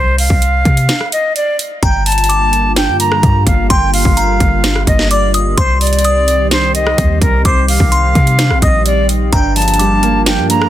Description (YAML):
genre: hip hop, trap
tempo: 128 BPM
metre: 4/4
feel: half-time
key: G minor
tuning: A4 = 440 Hz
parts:
  - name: silver concert flute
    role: melody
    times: 0.0-10.7 s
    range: Bb4 to Bb5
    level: -15 LUFS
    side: equal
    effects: none
  - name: warm 808-style bass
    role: bass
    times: 0.0-10.7 s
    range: G1 to C3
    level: -15 LUFS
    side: equal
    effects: none
  - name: trap drum kit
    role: drums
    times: 0.2-10.7 s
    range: hi-hat, kick drum, rim click, snare drum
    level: -15 LUFS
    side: equal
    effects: none
  - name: delicate synth tine bell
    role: second line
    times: 1.8-10.7 s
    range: Bb5 to Eb6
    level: -21 LUFS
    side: left 2 dB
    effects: chorus, ping-pong delay
  - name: dark analog pad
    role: sustained chords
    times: 2.1-10.7 s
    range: D3 to G4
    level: -20 LUFS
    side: equal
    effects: chorus
  - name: felt-muted upright piano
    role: accompaniment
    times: 9.3-10.7 s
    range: G2 to D4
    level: -16 LUFS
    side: right 3 dB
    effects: none
room: digital ambience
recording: dense, heavily limited modern master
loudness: -10 LUFS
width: side -12 dB against mid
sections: 0.0-1.8 A section; 1.8-10.7 B section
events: break 0.9-1.8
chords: 0.0 N.C.; 1.8 Gm7; 5.6 Cm; 9.3 Gm7